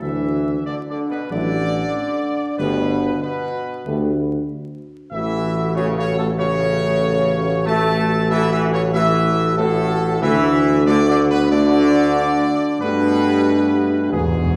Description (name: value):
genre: classical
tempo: 94 BPM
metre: 4/4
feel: straight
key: A major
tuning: A4 = 440 Hz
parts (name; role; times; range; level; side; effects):
- bright trumpet section; melody; 0.0-14.6 s; G#4 to A5; -26 LUFS; equal; none
- clear trombone section; sustained chords; 0.0-14.6 s; G#2 to A3; -26 LUFS; equal; none
- dark French horn section; sustained chords; 0.0-14.6 s; F#3 to G4; -26 LUFS; equal; none
- warm tuba; bass; 0.0-14.6 s; G1 to G2; -22 LUFS; equal; none
- timpani; percussion; 14.1-14.6 s; E2; -24 LUFS; equal; none
room: wet recital hall reverb, RT60 1.4 s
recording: heard from further back in the room, vinyl crackle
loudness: -18 LUFS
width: mono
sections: 0.0-14.6 A section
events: timpani fill 14.1-14.6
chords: 0.0 Dadd9; 2.6 Gadd9; 5.1 A6; 10.2 Dadd9; 12.8 Gadd9